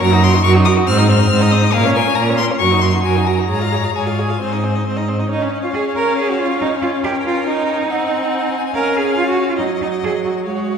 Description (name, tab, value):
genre	quick classical-period movement for string quartet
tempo	139 BPM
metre	4/4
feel	straight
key	Db major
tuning	A4 = 441 Hz
part	clear violin	melody	0.0-10.8 s	F5 to F6	-22 LUFS	left 7 dB	none
part	clear violin	second line	0.0-10.8 s	Gb4 to Gb5	-24 LUFS	left 3 dB	none
part	clear viola	accompaniment	0.0-10.8 s	Gb3 to Ab4	-20 LUFS	right 2 dB	none
part	rich cello	bass	0.0-10.8 s	Gb2 to Bb4	-17 LUFS	right 2 dB	none
room	wet scoring stage reverb, RT60 1.8 s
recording	heard from further back in the room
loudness	-14 LUFS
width	side -7 dB against mid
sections	0.0-5.3 A section; 5.3-10.8 B section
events	none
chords	0.0 Ebm/Gb; 0.9 Ab; 1.7 Bbm; 2.6 Ebm/Gb; 3.5 Db/Ab; 4.4 Ab; 5.3 Db; 7.0 Eb7/Db; 7.9 Ab7/C; 8.7 Db; 9.6 Ebm/Gb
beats	| 0.02 0.45 0.88 1.31 | 1.74 2.17 2.61 3.05 | 3.50 3.95 4.41 4.86 | 5.30 5.74 6.17 6.60 | 7.04 7.47 7.89 8.32 | 8.74 9.16 9.59 10.03 | 10.47